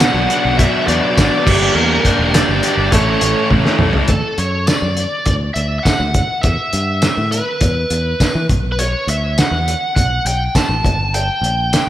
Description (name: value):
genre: indie rock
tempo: 102 BPM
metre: 4/4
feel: straight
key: D major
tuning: A4 = 437 Hz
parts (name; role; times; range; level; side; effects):
- biting lead guitar; melody; 0.0-11.9 s; A4 to A5; -19 LUFS; equal; overdrive, slapback echo
- mellow tine electric piano; second line; 0.0-3.8 s; F#4 to A4; -27 LUFS; right 5 dB; fast tremolo, slapback echo
- crunchy overdriven guitar; riff; 0.0-4.1 s; G2 to E4; -20 LUFS; left 8 dB; slapback echo
- thick fuzz guitar; riff; 0.0-4.1 s; E3 to A4; -19 LUFS; right 6 dB; distortion, ensemble chorus
- picked electric bass; bass; 0.0-11.8 s; E1 to E3; -19 LUFS; equal; none
- cloth-damped thuddy drum kit; drums; 0.0-11.9 s; crash cymbal, hi-hat, kick drum, snare drum, tambourine, toms; -16 LUFS; equal; none
room: moderate lush hall reverb, RT60 2.9 s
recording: big arena sound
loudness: -13 LUFS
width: side -12 dB against mid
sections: 0.0-4.1 A section; 4.1-11.9 B section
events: drum fill 3.5-4.1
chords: 0.0 Bm; 1.5 Gm; 2.9 A; 4.1 D; 6.4 Em; 8.5 Bm; 10.8 Gm